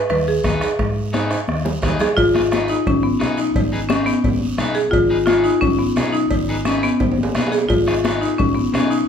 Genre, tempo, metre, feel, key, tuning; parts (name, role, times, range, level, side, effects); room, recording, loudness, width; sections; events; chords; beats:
latin, cumbia; 174 BPM; 4/4; straight; G# dorian; A4 = 441 Hz
marimba with hard mallets; melody; 0.1-9.1 s; B3 to B4; -18 LUFS; left 1 dB
hollow-body short-scale fingered electric bass; bass; 0.1-9.0 s; G#1 to G#2; -26 LUFS; equal
bombo; percussion; 0.1-8.9 s; -24 LUFS; equal
congas; percussion; 0.1-8.9 s; -26 LUFS; left 4 dB
guiro; percussion; 0.1-9.1 s; -36 LUFS; right 4 dB
timbales and cowbell; percussion; 0.1-8.9 s; -28 LUFS; right 4 dB
electric guitar at the edge of break-up; accompaniment; 0.4-8.9 s; D#4 to B4; -27 LUFS; left 2 dB
moderate large studio reverb, RT60 1.1 s; band playing live in one room; -16 LUFS; side -7 dB against mid
0.0-2.2 A section; 2.2-9.1 B section
drum fill 1.1-2.2, 7.0-7.7
0.0 G#m
0.10 0.44 | 0.79 1.13 1.48 1.82 | 2.17 2.52 2.86 3.21 | 3.55 3.90 4.24 4.59 | 4.93 5.28 5.63 5.97 | 6.32 6.66 7.01 7.36 | 7.70 8.05 8.39 8.74